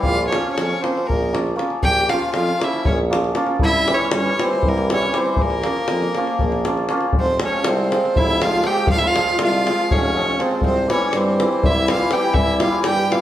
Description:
balkan folk, Balkan wedding band; 239 BPM (eighths); 7/8; straight; Bb dorian sharp4; A4 = 440 Hz
rich fiddle; melody; 0.0-13.2 s; Bb4 to G5; -21 LUFS; right 1 dB
musette accordion; second line; 0.0-13.2 s; Bb3 to G4; -26 LUFS; left 1 dB
hammered dulcimer; accompaniment; 0.0-13.2 s; E3 to F4; -23 LUFS; equal
clear tuba; bass; 0.0-13.2 s; F1 to G2; -24 LUFS; equal
davul; percussion; 0.0-13.2 s; -23 LUFS; left 1 dB
wet large studio reverb, RT60 1.2 s; band playing live in one room; -16 LUFS; side -12 dB against mid
0.0-7.1 A section; 7.1-13.2 B section
speeding up 0.0-13.2
0.0 Bbm; 3.6 C; 5.4 Bbm; 7.1 Fm; 10.6 C
| 0.03 0.29 0.55 0.80 1.06 1.31 1.57 | 1.82 2.08 2.33 2.59 2.85 3.10 3.35 | 3.61 3.86 4.12 4.37 4.62 4.88 5.13 | 5.38 5.63 5.89 6.14 6.39 6.64 6.89 | 7.14 7.39 7.64 7.89 8.14 8.39 8.64 | 8.89 9.14 9.39 9.64 9.88 10.13 10.38 | 10.63 10.87 11.12 11.37 11.61 11.86 12.11 | 12.35 12.60 12.84 13.09

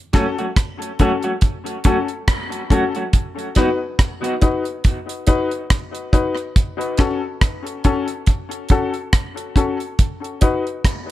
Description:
dub reggae; 70 BPM; 4/4; swing 57% on 16ths; F# dorian; A4 = 444 Hz
clean electric guitar; accompaniment; 0.1-3.7 s; F#3 to F#4; -23 LUFS; right 1 dB; tremolo, tape echo
warm upright piano; stabs; 0.1-10.6 s; C#4 to B4; -22 LUFS; left 5 dB; tape echo
deep reggae drum kit; drums; 0.1-11.1 s; hi-hat, kick drum, rim click; -16 LUFS; equal
light reverb, small room ambience; echo-heavy mix; -17 LUFS; side -14 dB against mid
0.0-11.1 A section
0.0 F#m; 3.1 B; 6.6 F#m; 10.0 B
0.56 1.42 2.28 | 3.13 3.99 4.85 5.71 | 6.56 7.42 8.28 9.13 | 9.99 10.85

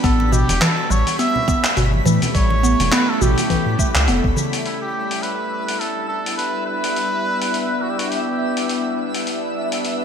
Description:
organic downtempo; 104 BPM; 4/4; swing 57% on 16ths; E dorian; A4 = 440 Hz
trumpet with cup mute; melody; 0.0-9.0 s; E4 to E5; -24 LUFS; equal; ping-pong delay
bowed-like drone; sustained chords; 0.0-10.0 s; G3 to B4; -24 LUFS; left 1 dB; built-in reverb, sidechain pumping
mallet-like synth pluck; arpeggios; 0.0-4.5 s; B2 to B3; -21 LUFS; equal; chorus, phaser, ping-pong delay
warm sub bass; bass; 0.0-4.3 s; E1 to A2; -19 LUFS; equal; tube saturation
dusty soul sampler-style drum kit; drums; 0.0-10.0 s; handclaps, hi-hat, shaker; -23 LUFS; left 1 dB; gated reverb
electronic kick drum; drums; 0.0-4.3 s; -21 LUFS; equal
twinkling granular texture; texture; 0.0-10.0 s; E5 to B5; -31 LUFS; equal; built-in reverb, analog chorus
congas; percussion; 0.2-4.5 s; -29 LUFS; right 2 dB
wet lush hall reverb, RT60 2.0 s; bright 1980s-style digital production; -17 LUFS; side -7 dB against mid
0.0-4.7 A section; 4.7-10.0 B section
0.0 A7; 4.7 Em7
| 0.04 0.62 1.19 1.77 | 2.35 2.92 3.50 4.08 | 4.66 5.23 5.81 6.39 | 6.96 7.54 8.12 8.69 | 9.27 9.85

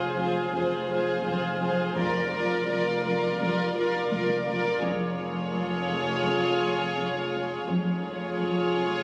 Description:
cinematic, suspense film score; 84 BPM; 4/4; straight; A4 = 445 Hz
dark studio violin section; melody; 0.0-9.0 s; C5 to D5; -34 LUFS; equal
warm studio violin section; second line; 0.0-9.0 s; Ab4 to Bb4; -33 LUFS; equal
warm studio viola section; accompaniment; 0.0-9.0 s; F4; -34 LUFS; equal
deep dark ambient pad; sustained chords; 0.0-9.0 s; Ab4 to F5; -37 LUFS; equal; chorus, built-in reverb
dark studio cello section; riff; 0.0-9.0 s; F2 to F3; -37 LUFS; equal
dark studio double bass section; bass; 0.0-9.0 s; F1; -38 LUFS; equal
warm studio cello section; bass; 0.0-9.0 s; F2; -40 LUFS; equal
warm sub bass; drone; 0.0-9.0 s; F1; -50 LUFS; equal
taiko ensemble; drums; 1.3-8.4 s; -41 LUFS; equal
moderate scoring stage reverb, RT60 2.0 s; recorded on a phone in the room, studio reverb, compression; -27 LUFS; mono
0.0-9.0 A section
drum fill 4.1-4.8
0.0 Fm; 2.0 Bb/F; 4.8 Db/F
0.54 1.25 | 1.97 2.68 3.40 4.11 | 4.83 5.54 6.25 6.97 | 7.68 8.40

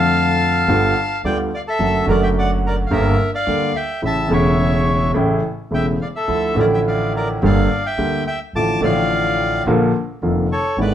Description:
tango; 107 BPM; 4/4; rubato; D harmonic minor; A4 = 440 Hz
bandoneon; melody; 0.0-10.9 s; A4 to D6; -20 LUFS; equal
warm concert grand piano; accompaniment; 0.0-10.9 s; E1 to G4; -18 LUFS; equal
upright bass; bass; 0.0-10.9 s; E1 to F2; -24 LUFS; equal
wet studio reverb, RT60 0.8 s; band playing live in one room; -16 LUFS; side -10 dB against mid
0.0-10.9 A section
0.0 Dm/F; 0.7 G7; 1.8 D/F#; 2.9 Gm; 4.0 A; 6.3 Dmadd9; 7.4 Gm; 8.5 Dm/A; 9.7 Bb
0.12 0.68 1.23 | 1.79 2.35 2.90 3.46 | 4.02 4.58 5.14 5.71 | 6.28 6.85 7.41 7.97 | 8.54 9.10 9.66 10.22 | 10.77

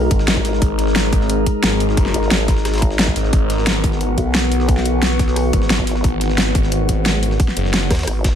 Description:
dark technical drum and bass; 177 BPM; 4/4; straight; A4 = 440 Hz
metallic inharmonic drone; sustained chords; 0.0-8.4 s; E3 to A#4; -21 LUFS; left 1 dB; chorus, built-in reverb, sidechain pumping
vowel-sweep wobble bass; bass; 0.0-8.4 s; G#1 to D#2; -19 LUFS; equal; chorus
phased detuned saw bass; bass; 0.1-7.9 s; F#1 to G#1; -19 LUFS; equal; phaser, sidechain pumping
breakbeat sampler-style drum kit; drums; 0.1-8.3 s; hi-hat, snare drum; -31 LUFS; equal
dubstep drum kit; drums; 0.1-8.3 s; hi-hat, rim click, snare drum; -20 LUFS; equal; overdrive
electronic kick drum; drums; 0.1-8.3 s; -18 LUFS; equal
digital ambience; -14 LUFS; side -9 dB against mid
0.0-8.4 A section
0.0 G#sus2; 3.3 E/G#
0.28 | 0.62 0.96 1.29 1.63 | 1.97 2.31 2.65 2.99 | 3.33 3.67 4.01 4.35 | 4.68 5.02 5.36 5.70 | 6.04 6.38 6.72 7.06 | 7.40 7.74 8.07

